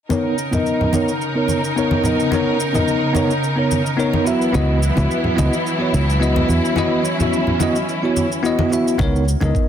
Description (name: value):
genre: sunset chillout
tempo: 108 BPM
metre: 4/4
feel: swing 53% on 16ths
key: unclear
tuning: A4 = 442 Hz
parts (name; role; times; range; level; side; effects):
- bell-like tine electric piano; accompaniment; 0.1-9.7 s; B3 to E5; -19 LUFS; equal; auto-pan, low-pass filter, digital delay
- rich studio string section; sustained chords; 0.1-9.0 s; C#3 to A#4; -22 LUFS; equal; vintage 12-bit sampler grit
- electronic shaker and toms; drums; 0.1-9.7 s; none; -31 LUFS; equal; none
- congas; percussion; 0.1-9.5 s; none; -24 LUFS; left 2 dB; none
- fingered electric bass; bass; 4.5-9.5 s; C#2 to E2; -17 LUFS; equal; none
- electronic kick drum; drums; 9.0-9.7 s; none; -20 LUFS; right 1 dB; none
room: moderate digital room reverb, RT60 1.1 s, digital ambience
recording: dense, heavily limited modern master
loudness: -16 LUFS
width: side -9 dB against mid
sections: 0.1-9.0 A section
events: filter sweep on tine electric piano 0.1-9.0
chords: 0.1 Bmaj9/C#; 4.3 C#m11; 9.0 Bmaj9/C#